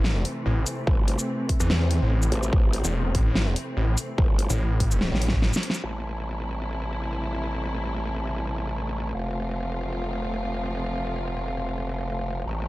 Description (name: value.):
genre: heavy wobble dubstep.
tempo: 145 BPM.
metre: 4/4.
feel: half-time.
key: A minor.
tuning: A4 = 440 Hz.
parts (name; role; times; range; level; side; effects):
rich studio string section; sustained chords; 0.0-12.7 s; C3 to G4; -32 LUFS; equal; sidechain pumping, low-pass filter.
snarling distorted saw bass; bass; 0.0-5.5 s; E1 to E2; -22 LUFS; equal; distortion, overdrive.
big-room dance drum kit; drums; 0.0-5.8 s; hi-hat, shaker, snare drum; -28 LUFS; equal; low-pass filter on cymbals, low-pass filter on hats, low-pass filter on perc, low-pass filter on snare.
growl bass; bass; 0.9-12.7 s; F1 to A1; -29 LUFS; equal; chorus, overdrive.
electronic kick drum; drums; 0.9-5.4 s; none; -22 LUFS; equal; none.
room: little or no reverb.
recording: dark, warm production.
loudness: -23 LUFS.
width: side -18 dB against mid.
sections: 0.0-5.8 A section; 5.8-12.7 B section.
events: drop 0.0-5.8; drum fill 5.0-5.8.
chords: 0.0 Am; 5.8 Am7; 9.1 F.